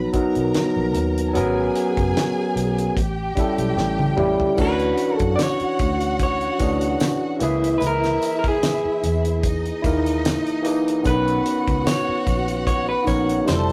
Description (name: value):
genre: lush 1970s-style soul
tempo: 74 BPM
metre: 4/4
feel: swing 54% on 16ths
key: unclear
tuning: A4 = 439 Hz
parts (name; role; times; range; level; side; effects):
- warm studio violin section; second line; 0.0-13.7 s; D#4 to A#5; -31 LUFS; equal; none
- overdriven tine electric piano; accompaniment; 0.0-13.7 s; D3 to B4; -24 LUFS; equal; none
- vintage muted fingered electric bass; bass; 0.0-13.7 s; F1 to F#2; -28 LUFS; equal; none
- damped 70s drum kit; drums; 0.1-13.7 s; crash cymbal, hi-hat, kick drum, snare drum, toms; -27 LUFS; equal; none
- electric guitar through a small old amp; melody; 4.6-13.7 s; G#4 to D5; -27 LUFS; equal; none
- tambourine; percussion; 4.6-13.7 s; none; -46 LUFS; equal; none
room: moderate studio reverb, RT60 0.5 s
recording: rough rehearsal-room recording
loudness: -21 LUFS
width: mono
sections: 0.0-4.6 A section; 4.6-13.7 B section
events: drum fill 3.8-4.6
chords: 0.0 Bmaj7; 1.4 G#m11; 3.0 A7; 4.6 Dmaj9; 7.4 C#m69; 11.0 Bmaj9